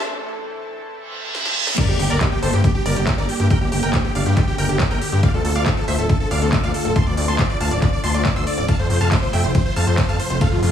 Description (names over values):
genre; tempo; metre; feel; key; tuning
uplifting trance; 139 BPM; 4/4; straight; unclear; A4 = 440 Hz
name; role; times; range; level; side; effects
analog string pad; sustained chords; 0.0-10.7 s; C3 to A4; -27 LUFS; left 1 dB; ensemble chorus, sidechain pumping
riser, reverse cymbal and sub drop; sound effects; 0.0-3.5 s; none; -25 LUFS; right 1 dB; none
techno drum kit; drums; 1.3-10.7 s; crash cymbal, handclaps, hi-hat, ride cymbal, snare drum; -27 LUFS; equal; overdrive, high-pass filter on snare, small room ambience, high-pass filter on hats, high-pass filter on cymbals
big supersaw lead; melody; 1.8-10.7 s; F4 to E6; -25 LUFS; right 1 dB; cassette tape, sidechain pumping, tape echo
analog pluck; second line; 1.8-10.7 s; F4 to E6; -30 LUFS; left 1 dB; chorus, sidechain pumping, tape echo
electronic kick drum; drums; 1.8-10.5 s; none; -19 LUFS; equal; small room ambience
gritty driven synth bass; bass; 1.9-10.7 s; D1 to G2; -20 LUFS; left 1 dB; sidechain pumping
room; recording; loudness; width
light reverb, digital ambience; high-pass filter, studio reverb; -16 LUFS; side -9 dB against mid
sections
0.0-1.8 A section; 1.8-10.7 B section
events
build-up 0.0-1.8; filter sweep 0.0-1.8; break 0.1-1.8; reverse cymbal 1.1-1.8; drum fill 1.3-1.8; drop 1.8-10.7; impact 1.8-3.5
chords
0.0 Am; 1.8 Gm; 5.2 Dm7; 8.7 F